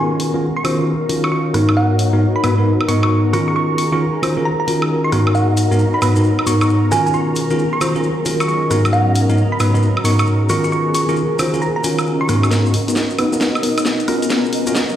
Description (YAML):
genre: UK garage, two-step garage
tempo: 134 BPM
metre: 4/4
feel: swing 64% on 16ths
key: G# dorian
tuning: A4 = 440 Hz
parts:
  - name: thumb-piano-like synth pluck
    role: melody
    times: 0.0-12.5 s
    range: F#5 to C#6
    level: -22 LUFS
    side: right 2 dB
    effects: chorus, phaser, cassette tape, tape echo
  - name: soft string machine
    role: sustained chords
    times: 0.0-15.0 s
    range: A#4 to D#6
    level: -29 LUFS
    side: left 1 dB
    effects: phaser, ensemble chorus
  - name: bell-like tine electric piano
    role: stabs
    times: 0.0-14.8 s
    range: G#2 to B#4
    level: -16 LUFS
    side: equal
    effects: fast stereo tremolo, low-pass filter, tape echo
  - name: granular cloud pad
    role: texture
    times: 0.0-15.0 s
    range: F#3 to F#5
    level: -23 LUFS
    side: left 1 dB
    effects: built-in reverb
  - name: garage drum kit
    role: drums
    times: 0.2-14.9 s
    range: hi-hat, rim click, snare drum, woodblock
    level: -23 LUFS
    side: right 1 dB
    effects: none
  - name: maracas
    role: percussion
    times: 5.3-15.0 s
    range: none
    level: -32 LUFS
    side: left 3 dB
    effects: none
  - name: dark detuned saw bass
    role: bass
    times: 12.5-15.0 s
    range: D#1 to D#2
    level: -33 LUFS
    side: equal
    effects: none
room: moderate lush hall reverb, RT60 1.9 s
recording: played on a big sound system in a bare room, large studio reverb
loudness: -14 LUFS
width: side -11 dB against mid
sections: 0.0-12.5 A section; 12.5-15.0 B section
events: filter sweep on tine electric piano 0.0-12.5, 12.5-15.0; build-up 12.5-15.0; drum fill 12.5-15.0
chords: 0.0 D#m9; 1.8 G#m9; 3.3 D#m9; 5.3 G#m9; 6.9 D#m9; 8.9 G#m9; 10.5 D#m9; 12.5 G#m9; 14.1 D#m9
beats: 0.42 0.87 1.32 | 1.76 2.21 2.66 3.11 | 3.56 4.00 4.45 4.90 | 5.35 5.79 6.24 6.69 | 7.14 7.59 8.03 8.48 | 8.93 9.38 9.82 10.27 | 10.72 11.17 11.62 12.06 | 12.51 12.96 13.41 13.86 | 14.30 14.75